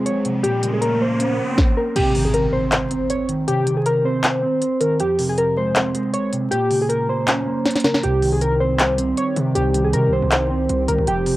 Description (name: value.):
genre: hip hop, trap.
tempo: 158 BPM.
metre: 4/4.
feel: half-time.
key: C phrygian.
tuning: A4 = 440 Hz.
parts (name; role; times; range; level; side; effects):
warbly lo-fi synth keys; melody; 0.0-11.3 s; G4 to Db5; -21 LUFS; equal; chorus, low-pass filter, cassette tape, tape echo.
mellow electric guitar; accompaniment; 0.0-11.4 s; F2 to C5; -22 LUFS; right 1 dB; spring reverb, low-pass filter, cassette tape.
warm analog pad; sustained chords; 0.0-1.6, 8.0-11.4 s; Eb3 to Bb4; -27 LUFS; equal; chorus, cassette tape.
riser and impact; sound effects; 0.0-3.5 s; none; -26 LUFS; equal; none.
trap drum kit; drums; 0.1-11.4 s; crash cymbal, handclaps, hi-hat, kick drum, snare drum; -21 LUFS; equal; cassette tape.
distorted 808-style bass; bass; 8.0-11.4 s; F1 to C3; -23 LUFS; equal; distortion.
room: light reverb.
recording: home recording on cassette, vinyl crackle.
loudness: -17 LUFS.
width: side -16 dB against mid.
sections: 0.0-2.0 A section; 2.0-11.4 B section.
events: riser 0.0-2.0; kick muted 2.0-8.0; impact 2.0-3.5; drum fill 7.7-8.0.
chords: 0.4 Bbm; 2.0 Cm; 5.0 Fm; 6.5 Bbm; 8.0 Cm.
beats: 0.06 | 0.44 0.82 1.20 1.58 | 1.96 2.34 2.72 3.10 | 3.48 3.86 4.24 4.62 | 5.00 5.38 5.76 6.14 | 6.52 6.90 7.28 7.66 | 8.04 8.41 8.79 9.17 | 9.55 9.93 10.31 10.69 | 11.07.